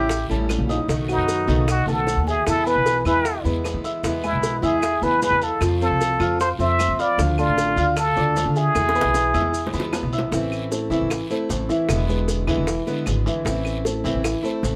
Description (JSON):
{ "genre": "latin, Cuban son and guajira", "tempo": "153 BPM", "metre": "4/4", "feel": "straight", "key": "A harmonic minor from 10.3 s", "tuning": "A4 = 440 Hz", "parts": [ { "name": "trumpet with plunger mute", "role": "melody", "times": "0.0-9.9 s", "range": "D#4 to E5", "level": "-24 LUFS", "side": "equal", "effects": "none" }, { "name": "mellow hollow concert flute", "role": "second line", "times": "0.0-9.9 s", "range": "B4 to C6", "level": "-34 LUFS", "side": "equal", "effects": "none" }, { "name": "picked plugged-in steel-string acoustic guitar", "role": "accompaniment", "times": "0.0-14.8 s", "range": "B2 to F#4", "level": "-30 LUFS", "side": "equal", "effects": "none" }, { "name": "dark grand piano", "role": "arpeggios", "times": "0.0-14.8 s", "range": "D#3 to F6", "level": "-29 LUFS", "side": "equal", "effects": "none" }, { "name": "upright bass", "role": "bass", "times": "0.0-14.8 s", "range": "E1 to F3", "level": "-27 LUFS", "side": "equal", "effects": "none" }, { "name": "bongos", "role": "percussion", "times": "0.1-14.8 s", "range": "none", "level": "-32 LUFS", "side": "equal", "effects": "none" }, { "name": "guiro", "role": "percussion", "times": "0.1-14.8 s", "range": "none", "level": "-41 LUFS", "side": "equal", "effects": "none" }, { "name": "maracas", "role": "percussion", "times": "0.1-14.8 s", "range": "none", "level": "-41 LUFS", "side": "equal", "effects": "none" }, { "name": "claves", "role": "percussion", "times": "0.5-14.4 s", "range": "none", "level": "-39 LUFS", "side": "equal", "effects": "none" } ], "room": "moderate small room reverb, RT60 0.6 s", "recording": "band playing live in one room", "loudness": "-21 LUFS", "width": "mono", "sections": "0.0-10.3 A section; 10.3-14.8 B section", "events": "drum fill 8.8-10.3", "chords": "0.0 A7; 0.9 B7; 2.5 E; 5.6 F; 7.2 Dm; 8.8 E; 10.3 Am; 11.9 E7; 13.5 Am", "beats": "0.10 0.49 | 0.89 1.28 1.68 2.07 | 2.47 2.86 3.25 3.65 | 4.04 4.43 4.83 5.22 | 5.62 6.01 6.40 6.79 | 7.19 7.58 7.97 8.36 | 8.76 9.15 9.54 9.93 | 10.33 10.72 11.11 11.50 | 11.89 12.29 12.68 13.07 | 13.46 13.85 14.24 14.64" }